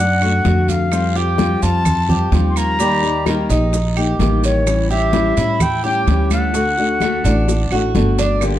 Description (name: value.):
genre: latin, Cuban son and guajira.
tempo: 128 BPM.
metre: 4/4.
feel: straight.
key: unclear.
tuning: A4 = 440 Hz.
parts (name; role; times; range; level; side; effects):
reedy concert flute; melody; 0.0-7.9 s; C#5 to C6; -20 LUFS; left 2 dB; none.
nylon-string guitar; accompaniment; 0.0-8.6 s; D3 to G4; -21 LUFS; left 3 dB; none.
Cuban tres; arpeggios; 0.0-8.4 s; G3 to G4; -23 LUFS; right 3 dB; none.
upright bass; bass; 0.0-8.6 s; G1 to A2; -18 LUFS; right 1 dB; none.
bongos; percussion; 0.2-8.6 s; none; -27 LUFS; left 5 dB; none.
claves; percussion; 0.2-8.6 s; none; -31 LUFS; right 7 dB; none.
congas; percussion; 0.2-8.6 s; none; -22 LUFS; left 1 dB; none.
maracas; percussion; 0.2-8.6 s; none; -33 LUFS; right 9 dB; none.
guiro; percussion; 0.5-8.6 s; none; -33 LUFS; right 9 dB; none.
room: moderate studio reverb, RT60 0.7 s.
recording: dark, warm production.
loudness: -14 LUFS.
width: side -12 dB against mid.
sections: 0.0-8.4 A section.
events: drum fill 0.7, 7.5-8.4.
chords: 0.0 D; 0.9 Fsus2; 2.8 Eb; 4.7 A7; 6.5 D.